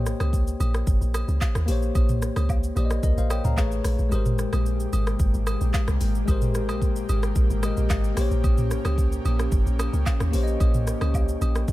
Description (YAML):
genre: amapiano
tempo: 111 BPM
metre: 4/4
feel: straight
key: Bb dorian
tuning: A4 = 440 Hz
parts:
  - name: bell-like tine electric piano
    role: accompaniment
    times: 0.0-11.7 s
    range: Ab3 to Bb5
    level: -30 LUFS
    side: left 4 dB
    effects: none
  - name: deep log drum bass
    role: bass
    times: 0.0-11.7 s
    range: G1 to Eb2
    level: -24 LUFS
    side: equal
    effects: none
  - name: afro-pop drum kit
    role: drums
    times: 0.1-11.7 s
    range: handclaps, hi-hat, kick drum, rim click, shaker, toms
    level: -25 LUFS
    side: equal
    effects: none
  - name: agogo bells and woodblock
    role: percussion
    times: 0.2-11.5 s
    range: none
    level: -38 LUFS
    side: right 1 dB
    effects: none
  - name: airy breathy pad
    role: sustained chords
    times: 4.1-11.7 s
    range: Bb2 to G4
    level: -33 LUFS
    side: right 1 dB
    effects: chorus
room: digital ambience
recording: none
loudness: -21 LUFS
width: side -16 dB against mid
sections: 0.0-11.7 A section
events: kick muted 4.1-5.2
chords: 0.0 Bbm69; 3.6 Amaj9; 4.1 Abmaj9; 8.2 Bbm69